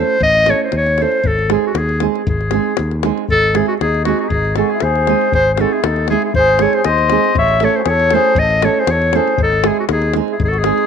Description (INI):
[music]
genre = balkan folk, Balkan wedding band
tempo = 118 BPM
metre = 2/4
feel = swing 54% on 16ths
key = G# phrygian dominant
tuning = A4 = 440 Hz
[part]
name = clear clarinet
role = melody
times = 0.0-10.9 s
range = F#4 to E5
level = -16 LUFS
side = left 1 dB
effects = none
[part]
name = nylon-string guitar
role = accompaniment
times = 0.0-10.8 s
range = G#3 to A4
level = -19 LUFS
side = right 14 dB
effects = none
[part]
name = davul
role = percussion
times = 0.1-10.8 s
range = none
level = -22 LUFS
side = left 7 dB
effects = none
[part]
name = modern bright fingered electric bass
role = bass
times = 0.2-10.7 s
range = G#1 to E2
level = -19 LUFS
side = left 1 dB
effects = none
[part]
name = mellow accordion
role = second line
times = 3.3-10.9 s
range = D#4 to C#5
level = -21 LUFS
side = left 13 dB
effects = none
[sound]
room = moderate spring reverb, RT60 2.0 s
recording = 1960s-style stereo with parts hard left and right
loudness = -12 LUFS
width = side -7 dB against mid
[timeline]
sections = 0.0-3.3 A section; 3.3-10.9 A section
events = none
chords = 0.0 A; 1.3 G#; 7.4 A; 9.4 G#